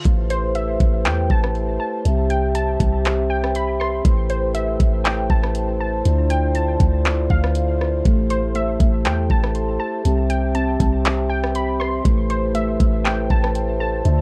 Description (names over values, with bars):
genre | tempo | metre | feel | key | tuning
hip hop, atmospheric cloud-rap | 120 BPM | 4/4 | half-time | A minor | A4 = 441 Hz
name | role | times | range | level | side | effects
muted felt-like synth keys | arpeggios | 0.0-0.1, 8.1-14.2 s | D3 to C6 | -30 LUFS | equal | chorus, low-pass filter, digital delay
dark French horn section | sustained chords | 0.1-14.2 s | C3 to E5 | -27 LUFS | equal | sidechain pumping
soft 808-style bass | bass | 0.1-14.2 s | A1 to E2 | -23 LUFS | equal | none
smooth R&B drum kit | drums | 0.1-14.2 s | handclaps, hi-hat, kick drum, rim click | -22 LUFS | equal | none
warbly dusty pluck | melody | 0.3-14.0 s | C5 to C6 | -29 LUFS | equal | chorus, low-pass filter, digital delay
room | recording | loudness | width
little or no reverb | worn, warbling old tape, cassette tape, warbly pitch drift | -20 LUFS | mono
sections
0.1-14.2 A section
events
none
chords
0.1 Am7; 2.1 C; 4.1 Am7; 6.1 Dm7; 8.1 Am7; 10.1 C; 12.1 Am7